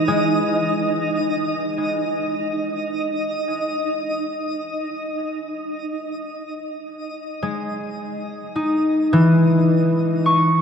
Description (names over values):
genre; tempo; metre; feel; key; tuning
ambient; 53 BPM; 4/4; straight; unclear; A4 = 440 Hz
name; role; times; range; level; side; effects
concert harp; arpeggios; 0.0-10.6 s; E3 to C#6; -19 LUFS; left 1 dB; tape echo
twinkling granular texture; texture; 0.0-10.6 s; D#4 to D#5; -24 LUFS; right 1 dB; built-in reverb
room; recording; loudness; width
wet huge ambient reverb, RT60 7.9 s; none; -19 LUFS; side -7 dB against mid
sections
0.0-10.6 A section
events
fade-out on synth texture 0.0-10.6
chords
none